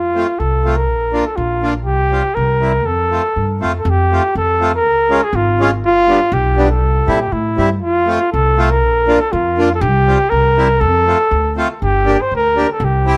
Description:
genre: alpine folk, alpine dance band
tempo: 121 BPM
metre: 2/4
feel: straight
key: F major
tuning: A4 = 440 Hz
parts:
  - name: warm flugelhorn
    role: melody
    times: 0.0-13.2 s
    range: E4 to C5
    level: -17 LUFS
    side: equal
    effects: tape echo
  - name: upright bass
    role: bass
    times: 0.0-13.1 s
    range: G1 to Bb2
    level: -20 LUFS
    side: equal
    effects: none
  - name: accordion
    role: accompaniment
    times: 0.2-13.2 s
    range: G3 to G4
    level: -20 LUFS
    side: equal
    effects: none
room: moderate studio ambience, RT60 0.5 s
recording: none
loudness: -15 LUFS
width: mono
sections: 0.0-3.9 A section; 3.9-11.8 A section; 11.8-13.2 B section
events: none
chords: 0.0 F; 0.9 Bb; 1.9 Csus4; 2.4 C; 2.9 F; 3.9 Fadd9; 4.8 Db; 5.8 G7; 6.8 C; 7.8 F; 8.8 Bb; 9.8 Csus4; 10.3 C; 10.8 F; 11.8 Gm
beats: 0.40 | 0.89 1.38 | 1.87 2.36 | 2.85 3.35 | 3.85 4.35 | 4.85 5.34 | 5.84 6.33 | 6.83 7.33 | 7.83 8.34 | 8.83 9.33 | 9.82 10.31 | 10.81 11.31 | 11.81 12.31 | 12.80

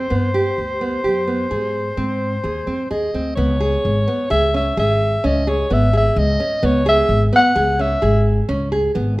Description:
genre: contemporary instrumental, chamber music in an uneven meter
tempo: 129 BPM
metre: 7/4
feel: straight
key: unclear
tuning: A4 = 440 Hz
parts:
  - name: mellow soprano saxophone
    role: melody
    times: 0.0-8.3 s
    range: C5 to F#5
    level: -20 LUFS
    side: equal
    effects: none
  - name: nylon-string guitar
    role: arpeggios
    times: 0.0-9.1 s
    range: B3 to G#4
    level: -20 LUFS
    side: right 1 dB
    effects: none
  - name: upright bass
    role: bass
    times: 0.0-9.2 s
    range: G#1 to G#2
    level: -20 LUFS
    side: equal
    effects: none
room: moderate recital hall reverb, RT60 1.6 s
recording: none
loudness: -15 LUFS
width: side -19 dB against mid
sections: 0.0-3.4 A section; 3.4-9.2 B section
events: none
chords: 0.1 G; 1.5 G#; 3.4 C#m7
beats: | 0.11 0.57 1.04 1.51 1.98 2.45 2.91 | 3.38 3.85 4.31 4.78 5.24 5.71 6.17 | 6.64 7.10 7.57 8.03 8.50 8.96

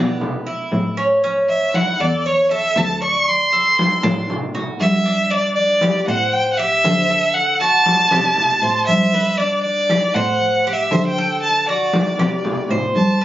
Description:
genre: latin, Cuban son and guajira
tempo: 118 BPM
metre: 4/4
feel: straight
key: G major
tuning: A4 = 439 Hz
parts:
  - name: rich violin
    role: melody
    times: 0.0-13.2 s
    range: C#5 to C#6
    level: -16 LUFS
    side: equal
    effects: none
  - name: Cuban tres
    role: arpeggios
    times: 0.0-13.2 s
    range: B3 to D5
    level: -22 LUFS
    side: right 1 dB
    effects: none
  - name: dark cello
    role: bass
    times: 0.0-13.2 s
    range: D2 to D3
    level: -24 LUFS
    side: equal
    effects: none
  - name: congas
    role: percussion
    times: 0.2-13.2 s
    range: none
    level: -22 LUFS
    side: left 1 dB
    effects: none
room: moderate studio reverb, RT60 0.5 s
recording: recorded on a phone in the room, club reverb, nothing above 7.5 kHz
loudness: -15 LUFS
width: side -13 dB against mid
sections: 0.0-5.3 A section; 5.3-13.2 B section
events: violin solo 0.0-5.3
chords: 0.0 E5; 1.2 A; 3.3 D; 5.3 G5; 6.3 Am7; 7.4 D7; 8.4 C; 9.4 G5; 10.4 Am7; 11.4 D7; 12.4 C5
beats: 0.21 0.72 | 1.23 1.74 2.25 2.76 | 3.27 3.78 4.29 4.80 | 5.31 5.82 6.33 6.84 | 7.35 7.86 8.37 8.88 | 9.39 9.90 10.41 10.92 | 11.43 11.94 12.45 12.96

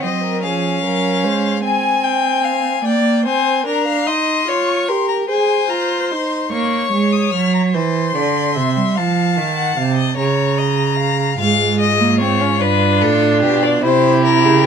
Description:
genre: classical, baroque-style fugue for string quartet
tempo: 49 BPM (dotted quarters)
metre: 6/8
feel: straight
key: unclear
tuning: A4 = 439 Hz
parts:
  - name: rich violin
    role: melody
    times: 0.0-14.7 s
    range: G4 to F6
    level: -19 LUFS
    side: left 8 dB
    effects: none
  - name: rich violin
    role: second line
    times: 0.0-14.7 s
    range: F4 to Ab5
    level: -22 LUFS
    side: left 4 dB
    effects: none
  - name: dark viola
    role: accompaniment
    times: 0.0-6.5, 11.4-14.7 s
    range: Ab3 to Ab4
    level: -18 LUFS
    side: right 3 dB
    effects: none
  - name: rich cello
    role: bass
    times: 0.0-1.6, 6.5-14.7 s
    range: G2 to Bb3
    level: -18 LUFS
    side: right 5 dB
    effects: none
room: light reverb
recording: close, detailed microphones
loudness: -14 LUFS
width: side -7 dB against mid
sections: 0.0-6.5 A section; 6.5-14.7 B section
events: none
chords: 0.4 Db/F; 1.6 Ab/C; 2.9 Bb7; 4.1 Eb7; 5.3 Ab; 6.5 Bbm; 7.7 C; 9.0 F7; 10.2 Bbm/Db; 11.4 Fm/Ab; 12.6 G7; 13.8 C7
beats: 0.43 | 1.64 2.85 | 4.07 5.29 | 6.52 7.75 | 8.97 10.18 | 11.40 12.61 | 13.83

